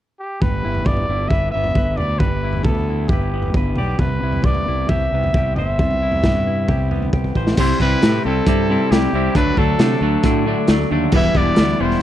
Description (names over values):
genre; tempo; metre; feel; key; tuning
indie rock; 134 BPM; 4/4; straight; G major; A4 = 440 Hz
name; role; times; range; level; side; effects
clear trumpet; melody; 0.2-12.0 s; G4 to E5; -23 LUFS; equal; tape echo
crunchy overdriven guitar; riff; 0.4-12.0 s; C3 to D5; -22 LUFS; equal; none
fuzz fingered electric bass; bass; 0.4-11.9 s; E1 to C3; -21 LUFS; equal; overdrive
raw garage drum kit; drums; 0.4-12.0 s; crash cymbal, hi-hat, kick drum, snare drum, toms; -19 LUFS; equal; none
room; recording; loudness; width
little or no reverb; dry, close 1970s-style studio recording; -15 LUFS; side -12 dB against mid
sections
0.4-7.6 A section; 7.6-12.0 B section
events
drum fill 7.1-7.6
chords
0.4 G6; 4.0 Cmaj7; 7.6 C; 9.4 D; 11.1 Em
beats
| 0.41 0.86 1.31 1.76 | 2.21 2.65 3.10 3.55 | 4.00 4.45 4.89 5.34 | 5.79 6.24 6.68 7.13 | 7.58 8.02 8.47 8.91 | 9.36 9.80 10.25 10.69 | 11.13 11.58